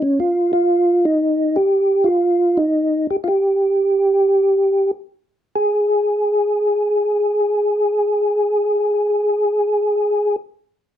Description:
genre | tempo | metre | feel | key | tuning
jazz | 100-118 BPM | 4/4 | swing 68% on 8ths | unclear | A4 = 440 Hz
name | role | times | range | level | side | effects
percussive tonewheel organ | solo | 0.0-10.4 s | Db4 to Ab4 | -15 LUFS | equal | slow rotary speaker, chorus vibrato
room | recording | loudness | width
light reverb | dark, warm production | -15 LUFS | side -10 dB against mid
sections
0.0-5.5 A section; 5.5-10.3 B section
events
slowing down 1.2-5.5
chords
none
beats
0.18 0.69 | 1.21 1.72 2.23 2.75 | 3.29 3.83 4.38 4.96 | 5.54 6.14 6.74 7.34 | 7.94 8.54 9.14 9.74

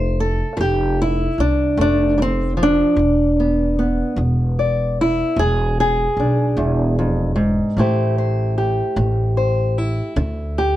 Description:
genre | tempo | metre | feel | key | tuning
acoustic country blues, solo or duo | 50 BPM (dotted quarters) | 12/8 | straight | unclear | A4 = 438 Hz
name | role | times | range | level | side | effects
fingerpicked old ladder-braced acoustic guitar | melody | 0.0-10.8 s | E2 to D5 | -18 LUFS | equal | none
upright bass | bass | 0.0-10.8 s | E1 to D2 | -20 LUFS | equal | none
room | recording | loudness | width
light reverb | close, detailed microphones | -16 LUFS | side -14 dB against mid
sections
0.0-10.8 A section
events
steel-string acoustic guitar solo 0.0-10.8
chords
0.0 Fmaj7; 3.0 E7; 7.8 Am7; 10.2 D5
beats
0.58 1.78 | 2.98 4.18 5.38 6.58 | 7.78 8.97 10.17

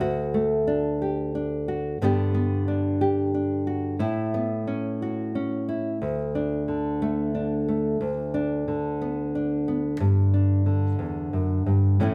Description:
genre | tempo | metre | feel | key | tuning
folk | 60 BPM (dotted quarters) | 6/8 | straight | D major | A4 = 440 Hz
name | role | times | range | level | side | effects
nylon-string guitar | solo | 0.0-12.1 s | D2 to G4 | -25 LUFS | equal | none
room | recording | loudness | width
wet large studio reverb, RT60 0.9 s | heard from further back in the room | -25 LUFS | mono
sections
0.0-6.0 A section; 6.0-12.1 B section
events
none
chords
0.0 D; 2.0 G; 4.0 Aadd9; 6.0 D5; 8.0 Bm/D; 10.0 G5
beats
| 0.01 1.01 | 2.01 3.01 | 4.00 5.00 | 6.00 7.00 | 8.00 9.00 | 10.00 11.00 | 12.00

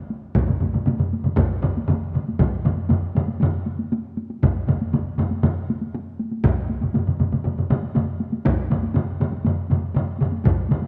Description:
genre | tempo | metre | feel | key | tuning
japanese traditional, taiko drum ensemble | 119 BPM | 4/4 | straight | none | none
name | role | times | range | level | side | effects
taiko ensemble | percussion | 0.1-10.9 s | none | -30 LUFS | equal | none
solo taiko drums | percussion | 0.3-10.6 s | none | -27 LUFS | equal | none
taiko ensemble | percussion | 0.3-10.8 s | none | -27 LUFS | equal | none
solo taiko drums | percussion | 0.4-10.8 s | none | -26 LUFS | equal | none
room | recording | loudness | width
wet scoring stage reverb, RT60 1.9 s | nothing above 10.5 kHz | -22 LUFS | mono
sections
0.0-2.4 A section; 2.4-10.9 B section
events
none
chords
none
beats
| 0.36 0.87 1.38 1.89 | 2.40 2.90 3.41 3.92 | 4.42 4.93 5.44 5.94 | 6.45 6.95 7.45 7.96 | 8.46 8.96 9.46 9.96 | 10.46

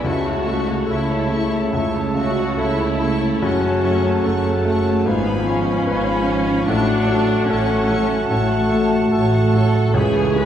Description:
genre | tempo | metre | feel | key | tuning
classical, romantic movement for piano and orchestra | 73 BPM | 4/4 | rubato | unclear | A4 = 439 Hz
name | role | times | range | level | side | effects
clear baby grand piano | melody | 0.0-10.5 s | C#2 to Cb5 | -21 LUFS | left 1 dB | none
rich studio violin section | melody | 0.0-10.5 s | Ab5 to C#6 | -34 LUFS | left 4 dB | none
small flute group | second line | 0.0-10.5 s | G#5 to Cb6 | -30 LUFS | right 2 dB | none
warm clarinet | second line | 0.0-10.5 s | C#5 to F#5 | -30 LUFS | left 2 dB | none
warm studio violin section | second line | 0.0-10.5 s | A4 to C#6 | -31 LUFS | left 1 dB | none
dark bassoon | accompaniment | 0.0-10.5 s | C#3 to A3 | -27 LUFS | equal | none
rich studio viola section | accompaniment | 0.0-10.5 s | A3 to B4 | -24 LUFS | right 1 dB | none
mellow French horn section | sustained chords | 0.0-10.5 s | E3 to G#4 | -26 LUFS | left 1 dB | none
rich studio double bass section | bass | 0.1-10.5 s | F#1 to C#2 | -25 LUFS | right 2 dB | none
warm studio cello section | bass | 0.1-10.5 s | F#2 to C#3 | -25 LUFS | right 2 dB | none
room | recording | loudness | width
wet scoring stage reverb, RT60 2.1 s | heard from further back in the room | -16 LUFS | side -10 dB against mid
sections
0.0-10.5 A section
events
none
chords
0.1 A/C#; 3.4 F#m; 5.1 Fdim/Ab; 6.7 F#m/A; 9.9 C#m7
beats
| 0.07 0.89 1.74 2.59 | 3.42 4.26 5.08 5.88 | 6.69 7.50 8.31 9.12 | 9.95

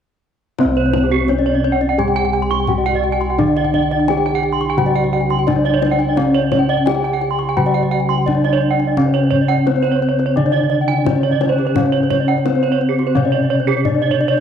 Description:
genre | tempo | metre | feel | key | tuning
Balinese gamelan | 86 BPM | 4/4 | straight | C pelog | A4 = 435 Hz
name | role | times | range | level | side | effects
gamelan-type bronze metallophone | melody | 0.6-14.4 s | C4 to Ab4-40c | -20 LUFS | equal | none
gamelan-type bronze metallophone | accompaniment | 0.6-14.4 s | C3 to Ab3-40c | -24 LUFS | left 2 dB | none
gamelan-type bronze metallophone | arpeggios | 0.6-14.3 s | G4-45c to Db6 | -22 LUFS | left 10 dB | none
gamelan-type bossed gongs | bass | 0.6-14.4 s | C2 to D4+50c | -20 LUFS | equal | none
kendang | percussion | 0.6-14.4 s | none | -26 LUFS | left 8 dB | none
gamelan-type bronze metallophone | arpeggios | 0.8-14.4 s | G4-45c to Db6 | -20 LUFS | right 10 dB | none
room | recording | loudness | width
moderate plate reverb, RT60 3.0 s | 1960s-style stereo with parts hard left and right | -14 LUFS | side -8 dB against mid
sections
0.6-14.4 A section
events
none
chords
none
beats
| 0.59 1.29 1.99 2.69 | 3.38 4.08 4.78 5.48 | 6.17 6.87 7.57 8.27 | 8.96 9.66 10.36 11.06 | 11.76 12.45 13.15 13.85

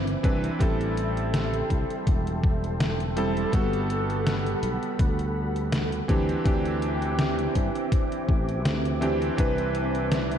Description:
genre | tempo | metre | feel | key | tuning
vaporwave | 82 BPM | 4/4 | swing 55% on 16ths | G major | A4 = 440 Hz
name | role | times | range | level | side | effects
clear electric grand piano | accompaniment | 0.0-10.4 s | E3 to B4 | -28 LUFS | right 1 dB | lush chorus, tape echo
soft string machine | sustained chords | 0.0-10.4 s | C4 to D6 | -33 LUFS | equal | ensemble chorus, vintage 12-bit sampler grit
sustaining fretless electric bass | bass | 0.0-10.4 s | E1 to G2 | -29 LUFS | equal | none
detuned 8-bit digital drum machine | drums | 0.1-10.4 s | hi-hat, snare drum | -31 LUFS | left 1 dB | none
electronic kick drum | drums | 0.2-9.5 s | none | -25 LUFS | equal | none
room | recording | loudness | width
moderate church reverb, RT60 3.2 s | dreamy mix soaked in reverb, cassette tape | -23 LUFS | side -9 dB against mid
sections
0.0-10.4 A section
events
none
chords
0.0 Cmaj9; 0.6 Am7; 3.5 Gmaj9; 6.1 D9sus4; 9.4 Cmaj9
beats
| 0.60 1.34 2.07 2.80 | 3.53 4.26 5.00 5.73 | 6.46 7.19 7.92 8.65 | 9.38 10.12

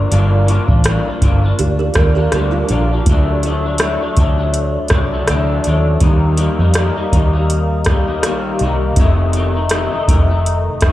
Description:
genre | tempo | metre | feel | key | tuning
indie pop, bedroom pop | 81 BPM | 4/4 | swing 55% on 16ths | G minor | A4 = 437 Hz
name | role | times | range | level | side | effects
electric guitar through a small old amp | accompaniment | 0.0-10.9 s | F2 to Eb4 | -18 LUFS | left 2 dB | ensemble chorus, vibrato effect, slapback echo
vintage muted fingered electric bass | bass | 0.0-10.9 s | F1 to F2 | -16 LUFS | equal | none
soft vintage rhythm box | drums | 0.1-10.9 s | hi-hat, kick drum, rim click | -15 LUFS | equal | none
kalimba | second line | 1.6-3.0 s | D4 to D5 | -23 LUFS | right 4 dB | ensemble chorus, tape echo, slapback echo
room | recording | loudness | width
light reverb | live gig heard through the venue's PA, club reverb | -12 LUFS | side -14 dB against mid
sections
0.0-10.9 A section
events
none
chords
0.0 Gm7; 3.1 D; 6.0 Eb; 9.0 F7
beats
| 0.12 0.85 1.59 2.33 | 3.07 3.81 4.54 5.28 | 6.02 6.76 7.50 8.23 | 8.97 9.71 10.45

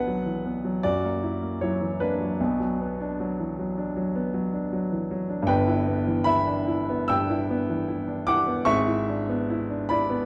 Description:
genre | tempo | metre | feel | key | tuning
classical, romantic character piece for solo piano | 77 BPM | 4/4 | rubato | unclear | A4 = 440 Hz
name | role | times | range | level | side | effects
warm grand piano | solo | 0.0-10.3 s | G1 to E6 | -26 LUFS | equal | none
room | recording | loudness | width
wet large studio reverb, RT60 1.4 s | dark, warm production | -26 LUFS | mono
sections
0.0-10.3 A section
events
none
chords
0.0 Bm; 0.9 F#7; 2.4 Bm; 5.5 Em/G; 8.7 E7/G#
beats
0.07 0.85 1.62 | 2.39 3.18 3.94 4.70 | 5.47 6.27 7.10 7.89 | 8.67 9.48

